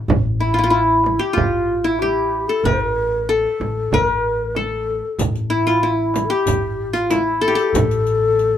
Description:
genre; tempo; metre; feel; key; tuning
Arabic maqam ensemble; 94 BPM; 4/4; straight; A maqam bayati; A4 = 439 Hz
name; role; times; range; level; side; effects
upright bass; bass; 0.0-8.6 s; A1; -24 LUFS; left 1 dB; none
darbuka; percussion; 0.1-8.5 s; none; -28 LUFS; right 5 dB; none
frame drum; percussion; 0.1-7.9 s; none; -22 LUFS; right 3 dB; none
qanun; melody; 0.4-8.6 s; E4 to Bb4+50c; -19 LUFS; left 2 dB; none
breathy low ney; second line; 0.4-8.6 s; E4 to C5; -21 LUFS; left 2 dB; none
riq; percussion; 5.2-8.5 s; none; -29 LUFS; left 3 dB; none
room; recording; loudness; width
light reverb; minimal, uncompressed stereo recording; -16 LUFS; side -10 dB against mid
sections
0.1-8.6 A section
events
none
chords
none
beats
| 0.10 0.73 1.37 2.01 | 2.65 3.29 3.92 4.56 | 5.20 5.84 6.47 7.11 | 7.75 8.39

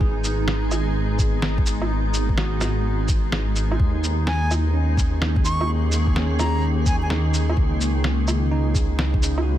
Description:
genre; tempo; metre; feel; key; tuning
future garage; 127 BPM; 4/4; swing 65% on 16ths; G# minor; A4 = 440 Hz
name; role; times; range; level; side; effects
bell-like tine electric piano; accompaniment; 0.0-9.6 s; A#3 to B4; -32 LUFS; right 3 dB; vintage 12-bit sampler grit, sidechain pumping, ping-pong delay
granular cloud pad; sustained chords; 0.0-9.6 s; C#3 to A#5; -28 LUFS; equal; built-in reverb, vintage 12-bit sampler grit, sidechain pumping
dark detuned saw bass; bass; 0.0-9.6 s; G#1 to D#2; -22 LUFS; equal; sidechain pumping
electronic kick drum; drums; 0.0-9.2 s; none; -22 LUFS; equal; overdrive, studio reverb
backwards swelling texture; texture; 0.0-9.6 s; G#3 to G#4; -36 LUFS; equal; built-in reverb
electronic cabasa, shaker, snare drum and woodblock; drums; 0.2-9.4 s; none; -28 LUFS; right 1 dB; studio reverb
bright reedy wooden flute; melody; 4.3-7.1 s; G#5 to C#6; -32 LUFS; left 1 dB; ping-pong delay
room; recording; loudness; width
digital ambience; faint mains hum; -19 LUFS; side -12 dB against mid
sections
0.0-9.6 A section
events
none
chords
0.0 G#m7; 3.8 D#7sus4; 7.6 C#sus2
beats
| 0.01 0.48 0.95 1.43 | 1.90 2.37 2.85 3.32 | 3.79 4.26 4.74 5.21 | 5.68 6.15 6.62 7.10 | 7.57 8.04 8.51 8.99 | 9.46

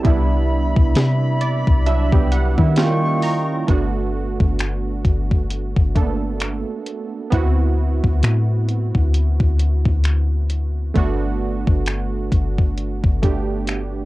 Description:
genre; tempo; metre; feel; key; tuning
contemporary R&B; 66 BPM; 4/4; swing 58% on 16ths; unclear; A4 = 436 Hz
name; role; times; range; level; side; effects
warm analog keys; accompaniment; 0.0-14.1 s; F#3 to A#5; -24 LUFS; right 6 dB; chorus
dark woodwind section; sustained chords; 0.0-3.7 s; E4 to C#6; -25 LUFS; equal; none
soft 808-style bass; bass; 0.0-14.1 s; G1 to D#3; -19 LUFS; left 1 dB; none
crisp 8-bit digital drum machine; drums; 0.0-13.9 s; finger snaps, hi-hat, kick drum, snare drum; -18 LUFS; left 1 dB; cassette tape
room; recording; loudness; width
little or no reverb; home recording on cassette; -16 LUFS; side -18 dB against mid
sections
0.0-3.7 A section; 3.7-14.1 B section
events
synth keys fill 1.0-3.7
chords
0.0 Cmaj9; 2.8 D#9; 3.7 Gmaj7; 7.3 D13; 11.0 Gmaj7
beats
| 0.05 0.96 1.87 2.77 | 3.68 4.59 5.50 6.41 | 7.32 8.23 9.14 10.05 | 10.96 11.87 12.78 13.68

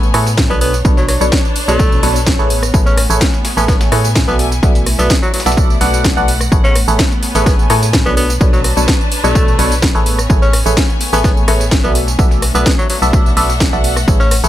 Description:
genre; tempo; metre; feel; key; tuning
piano house; 127 BPM; 4/4; straight; A major; A4 = 440 Hz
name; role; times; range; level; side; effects
barking FM electric piano; riff; 0.0-14.5 s; B2 to F#5; -18 LUFS; equal; chorus, phaser, tremolo, sidechain pumping, ping-pong delay
organ-like FM bass; bass; 0.0-14.5 s; A1 to A2; -17 LUFS; equal; tube saturation, sidechain pumping
house drum kit; drums; 0.0-14.5 s; hi-hat, ride cymbal, rim click, snare drum, tambourine; -19 LUFS; equal; overdrive
clear symphonic string section; texture; 0.0-14.5 s; A3 to A5; -23 LUFS; left 1 dB; sidechain pumping
breakbeat sampler-style drum kit; drums; 0.1-14.4 s; hi-hat, snare drum, tambourine; -27 LUFS; left 2 dB; none
electronic kick drum; drums; 0.4-14.2 s; none; -14 LUFS; equal; overdrive
clear tenor saxophone; melody; 0.5-14.4 s; F#3 to C#4; -22 LUFS; left 1 dB; ping-pong delay
room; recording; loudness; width
little or no reverb; none; -10 LUFS; side -13 dB against mid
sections
0.0-14.5 A section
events
none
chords
0.0 Amaj9; 4.4 E9sus4/B; 6.5 Amaj9; 12.0 E9sus4/B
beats
0.38 | 0.85 1.32 1.79 2.27 | 2.74 3.21 3.68 4.16 | 4.63 5.10 5.57 6.04 | 6.52 6.99 7.46 7.93 | 8.41 8.88 9.35 9.82 | 10.30 10.77 11.24 11.71 | 12.19 12.66 13.13 13.61 | 14.08

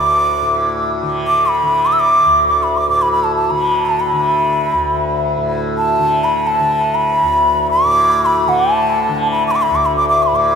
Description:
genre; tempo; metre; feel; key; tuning
indian classical, Hindustani; free time; none; none; unclear; A4 = 439 Hz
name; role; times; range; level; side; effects
breathy bansuri; melody; 0.0-10.6 s; A5 to E6; -13 LUFS; equal; analog delay
tanpura; drone; 0.0-10.6 s; D2 to D3; -19 LUFS; left 2 dB; none
room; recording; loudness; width
wet huge ambient reverb, RT60 4.4 s; dreamy mix soaked in reverb; -12 LUFS; side -6 dB against mid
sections
0.0-10.6 A section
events
none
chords
none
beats
free time

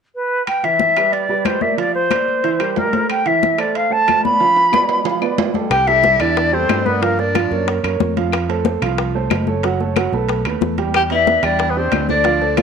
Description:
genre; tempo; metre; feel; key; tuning
Afro-Cuban jazz; 184 BPM; 4/4; straight; C major; A4 = 439 Hz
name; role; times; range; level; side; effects
silver concert flute; melody; 0.1-7.7, 11.0-12.6 s; Bb4 to B5; -16 LUFS; left 1 dB; none
claves; percussion; 0.5-12.6 s; none; -28 LUFS; left 14 dB; none
congas; percussion; 0.5-12.6 s; none; -24 LUFS; left 10 dB; none
timbales; percussion; 0.5-12.6 s; none; -27 LUFS; right 12 dB; none
warm concert grand piano; accompaniment; 0.6-12.6 s; E3 to G5; -21 LUFS; right 8 dB; none
clear tenor saxophone; second line; 5.7-7.7, 11.0-12.6 s; Bb3 to G4; -24 LUFS; left 9 dB; none
sustaining fretless electric bass; bass; 5.7-12.6 s; F#1 to G2; -22 LUFS; equal; none
bongos; percussion; 5.7-12.6 s; none; -26 LUFS; left 12 dB; none
room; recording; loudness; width
moderate echo chamber reverb, RT60 1.9 s, small room reverb; 1960s-style stereo with parts hard left and right; -14 LUFS; side -6 dB against mid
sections
0.5-5.7 A section; 5.7-12.6 B section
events
drum fill 4.4-5.7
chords
0.5 Em7; 1.8 Bbadd9/F; 2.4 C7; 3.1 Amadd9/E; 4.4 G7; 5.7 C69; 7.0 Gm7; 7.7 F#; 8.3 F; 9.6 F#m; 10.3 B7; 10.9 Em7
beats
0.15 | 0.47 0.80 1.13 1.46 | 1.79 2.11 2.44 2.77 | 3.10 3.42 3.75 4.08 | 4.41 4.73 5.06 5.39 | 5.71 6.04 6.37 6.69 | 7.02 7.35 7.67 8.00 | 8.33 8.65 8.98 9.31 | 9.63 9.96 10.29 10.61 | 10.94 11.27 11.59 11.92 | 12.25 12.57

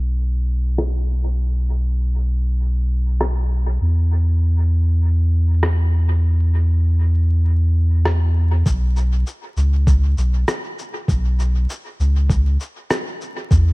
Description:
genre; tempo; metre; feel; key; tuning
ambient dub; 99 BPM; 4/4; straight; unclear; A4 = 440 Hz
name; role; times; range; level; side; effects
soft dub sub bass; bass; 0.0-13.7 s; B1 to E2; -16 LUFS; equal; tube saturation
electronic rim click and shaker; drums; 0.8-13.6 s; none; -27 LUFS; equal; dub echo
electronic kick drum; drums; 8.7-13.6 s; none; -17 LUFS; equal; none
room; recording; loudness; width
digital ambience; vinyl crackle, low-pass filter; -16 LUFS; side -23 dB against mid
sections
0.0-8.7 A section; 8.7-13.7 B section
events
filter sweep 0.0-8.7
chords
none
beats
0.18 0.78 | 1.39 2.00 2.60 3.21 | 3.81 4.42 5.03 5.63 | 6.24 6.84 7.45 8.05 | 8.66 9.27 9.87 10.48 | 11.09 11.69 12.30 12.90 | 13.51

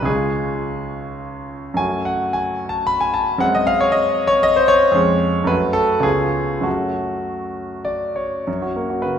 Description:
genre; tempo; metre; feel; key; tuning
classical, romantic character piece for solo piano; 97-120 BPM; 3/4; rubato; F# minor; A4 = 440 Hz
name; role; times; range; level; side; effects
clear concert grand piano; solo; 0.0-9.2 s; C#2 to B5; -17 LUFS; equal; none
room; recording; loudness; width
wet recital hall reverb, RT60 1.9 s; minimal, uncompressed stereo recording; -16 LUFS; side -8 dB against mid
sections
0.0-8.5 A section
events
none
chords
0.1 C#; 1.8 F#m; 3.4 G#7/F#; 5.0 C#/E#; 5.5 F#m; 6.1 C#7; 6.6 F#m; 8.5 F#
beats
| 0.07 0.64 1.21 | 1.78 2.35 2.89 | 3.43 3.95 4.45 | 4.97 5.49 6.05 | 6.65 7.26 7.86 | 8.47 9.04

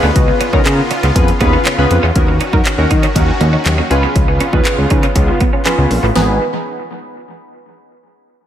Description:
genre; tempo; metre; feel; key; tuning
dance-pop; 120 BPM; 4/4; straight; G# dorian; A4 = 440 Hz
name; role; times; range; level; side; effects
chorused retro synth keys; accompaniment; 0.0-6.4 s; B3 to B4; -18 LUFS; left 1 dB; tremolo, sidechain pumping, low-pass filter, analog delay
supersaw chords; sustained chords; 0.0-6.4 s; C#3 to G#4; -21 LUFS; equal; sidechain pumping, low-pass filter
twelve-string electric guitar; riff; 0.0-6.3 s; A#3 to D#4; -22 LUFS; right 4 dB; wide subtle chorus, low-pass filter, analog delay
fat analog bass; bass; 0.0-6.4 s; G#1 to D#3; -15 LUFS; equal; sidechain pumping
pop drum kit; drums; 0.2-6.3 s; handclaps, hi-hat, kick drum, snare drum; -16 LUFS; equal; analog delay
mallet-like synth pluck; arpeggios; 2.2-6.4 s; E#3 to D#5; -25 LUFS; left 4 dB; chorus, sidechain pumping, low-pass filter, analog delay
room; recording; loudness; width
light reverb, digital ambience; echo-heavy mix; -11 LUFS; side -10 dB against mid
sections
0.0-2.2 A section; 2.2-6.2 B section; 6.2-8.2 C section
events
filter sweep 2.2-6.2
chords
0.0 C#7; 2.2 D#m7; 3.9 C#7; 6.2 G#m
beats
| 0.16 0.66 1.16 1.66 | 2.16 2.66 3.16 3.66 | 4.16 4.66 5.16 5.66 | 6.16

